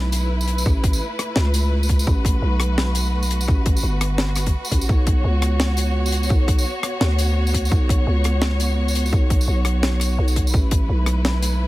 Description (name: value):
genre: half-time drum and bass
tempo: 170 BPM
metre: 4/4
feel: swing 59% on 16ths, half-time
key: unclear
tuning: A4 = 442 Hz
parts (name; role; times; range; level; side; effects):
- warm studio string section; sustained chords; 0.0-11.7 s; A3 to C#5; -27 LUFS; left 1 dB; sidechain pumping
- growling 808-style bass; bass; 0.0-11.7 s; G1 to D2; -19 LUFS; equal; tube saturation
- tight funk drum kit; drums; 0.1-11.5 s; hi-hat, rim click, snare drum, tambourine; -25 LUFS; left 1 dB; none
- electronic kick drum; drums; 0.7-10.8 s; none; -19 LUFS; equal; none
room: studio reverb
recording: none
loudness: -17 LUFS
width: side -18 dB against mid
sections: 0.0-11.7 A section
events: none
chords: 0.0 Aadd9; 4.9 Bm; 10.5 Asus2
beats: 0.30 | 0.66 1.01 1.36 1.72 | 2.07 2.42 2.77 3.13 | 3.48 3.83 4.19 4.54 | 4.89 5.25 5.60 5.95 | 6.30 6.66 7.01 7.36 | 7.72 8.07 8.42 8.78 | 9.13 9.48 9.83 10.19 | 10.54 10.89 11.25 11.60